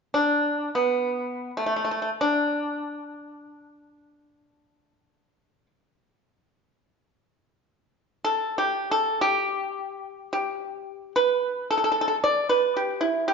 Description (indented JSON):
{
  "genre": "chinese traditional, Chinese solo plucked strings",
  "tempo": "free time",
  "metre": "none",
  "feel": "none",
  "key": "D zhi mode",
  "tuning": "A4 = 440 Hz",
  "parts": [
    { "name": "pipa", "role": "solo", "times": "0.1-13.3 s", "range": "A3 to D5", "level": "-23 LUFS", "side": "equal", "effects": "none" }
  ],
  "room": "wet recital hall reverb, RT60 1.4 s",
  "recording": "dark, warm production, nothing above 7.5 kHz",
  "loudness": "-23 LUFS",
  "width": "side -5 dB against mid",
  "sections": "0.0-9.5 A section; 9.5-13.3 B section",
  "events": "none",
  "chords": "none"
}